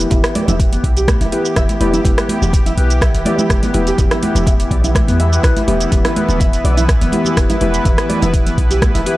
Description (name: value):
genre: afro house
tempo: 124 BPM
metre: 4/4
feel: straight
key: E minor pentatonic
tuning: A4 = 440 Hz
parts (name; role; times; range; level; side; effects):
- warm analog pad; sustained chords; 0.0-9.2 s; E3 to B4; -21 LUFS; equal; chorus, tremolo, sidechain pumping
- deep mellow chord stab; stabs; 0.0-9.2 s; B3 to B4; -22 LUFS; left 2 dB; chorus, cassette tape, sidechain pumping, tape echo
- warm 808-style bass; bass; 0.0-9.0 s; E1 to E2; -17 LUFS; equal; sidechain pumping
- afro-pop drum kit; drums; 0.0-9.2 s; hi-hat, rim click, shaker; -22 LUFS; right 1 dB; none
- nylon-string guitar; arpeggios; 0.1-9.2 s; B3 to E5; -22 LUFS; equal; sidechain pumping, tape echo
- electronic kick drum; drums; 0.1-8.9 s; none; -16 LUFS; equal; none
- congas; percussion; 0.1-8.9 s; none; -22 LUFS; right 2 dB; none
room: digital ambience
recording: dry, gritty hardware recording, cassette tape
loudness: -12 LUFS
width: side -17 dB against mid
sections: 0.0-9.2 A section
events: none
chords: 0.0 Em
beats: | 0.11 0.60 1.08 1.56 | 2.05 2.53 3.02 3.50 | 3.98 4.47 4.95 5.43 | 5.92 6.40 6.89 7.37 | 7.85 8.34 8.82